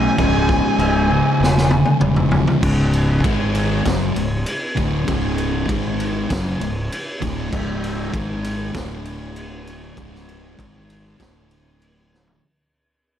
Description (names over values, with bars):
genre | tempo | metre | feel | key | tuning
stoner and doom metal | 98 BPM | 4/4 | straight | C# phrygian | A4 = 440 Hz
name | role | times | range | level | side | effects
fuzz lead guitar | melody | 0.0-2.0 s | G#5 | -23 LUFS | equal | distortion, tape echo
fuzz guitar | riff | 0.0-12.4 s | C#2 to A3 | -20 LUFS | left 1 dB | distortion
fuzz fingered electric bass | bass | 0.0-12.4 s | C#1 to G#1 | -24 LUFS | equal | overdrive
raw garage drum kit | drums | 0.2-12.4 s | crash cymbal, kick drum, ride cymbal, snare drum, toms | -23 LUFS | equal | none
room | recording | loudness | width
light reverb | dark, warm production | -17 LUFS | side -10 dB against mid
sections
0.0-2.6 A section; 2.6-12.4 B section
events
drum fill 1.4-2.6, 12.1-12.4; fade-out 2.6-12.4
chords
0.2 C#m; 2.6 C#5; 3.2 G#5; 3.8 C#5; 5.7 G#5; 6.3 C#5; 8.1 G#5; 8.7 D5; 10.0 C#5; 10.6 G#5; 11.2 D5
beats
| 0.17 0.78 1.40 2.01 | 2.62 3.23 3.85 4.46 | 5.07 5.68 6.30 6.91 | 7.52 8.13 8.75 9.36 | 9.97 10.58 11.20 11.81